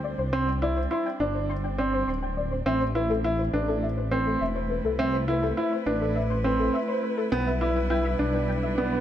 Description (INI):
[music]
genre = piano and strings electronica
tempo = 103 BPM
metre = 4/4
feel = straight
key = unclear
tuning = A4 = 443 Hz
[part]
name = dark string quartet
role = sustained chords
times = 0.0-9.0 s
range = G3 to C5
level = -32 LUFS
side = equal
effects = none
[part]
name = soft round pluck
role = arpeggios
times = 0.0-9.0 s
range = A4 to C6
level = -32 LUFS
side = left 3 dB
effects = ensemble chorus, cassette tape, digital delay
[part]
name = dark detuned saw bass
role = bass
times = 0.0-9.0 s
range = D1 to D2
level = -29 LUFS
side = equal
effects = tube saturation
[part]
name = clear baby grand piano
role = riff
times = 0.3-9.0 s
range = B3 to E4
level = -27 LUFS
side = right 1 dB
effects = digital delay
[sound]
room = moderate concert hall reverb, RT60 1.9 s, studio reverb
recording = nothing above 10.4 kHz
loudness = -24 LUFS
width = side -10 dB against mid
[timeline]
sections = 0.0-9.0 A section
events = fade-in on string quartet 0.0-9.0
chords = 0.0 Gsus4; 2.7 Amadd9; 7.3 Em7